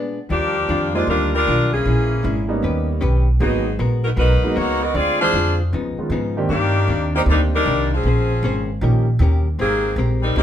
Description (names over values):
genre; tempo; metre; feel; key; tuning
jazz; 155 BPM; 4/4; swing 65% on 8ths; Eb major; A4 = 440 Hz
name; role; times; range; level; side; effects
hollow-body jazz guitar; accompaniment; 0.0-10.4 s; Bb2 to C5; -26 LUFS; left 3 dB; none
warm saxophone section; melody; 0.3-10.4 s; Eb3 to F5; -20 LUFS; left 1 dB; none
upright bass; bass; 0.3-10.4 s; Ab1 to Ab2; -19 LUFS; equal; none
warm grand piano; accompaniment; 0.9-10.4 s; Eb3 to G4; -25 LUFS; right 3 dB; none
room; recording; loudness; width
moderate studio reverb, RT60 0.8 s; band playing live in one room; -16 LUFS; side -10 dB against mid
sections
0.3-10.4 A section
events
break 0.0-0.3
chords
0.3 Ebmaj9; 1.8 Bbm7b5; 2.6 Eb7b13; 3.4 Abm9; 4.9 Dm7b5; 5.7 Db9; 6.5 Cm9; 8.0 Bbm9; 8.8 Eb7; 9.6 Abmaj9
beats
| 0.30 0.69 1.08 1.46 | 1.85 2.23 2.62 3.01 | 3.40 3.78 4.17 4.56 | 4.94 5.33 5.72 6.10 | 6.49 6.88 7.26 7.65 | 8.04 8.42 8.81 9.20 | 9.58 9.97 10.36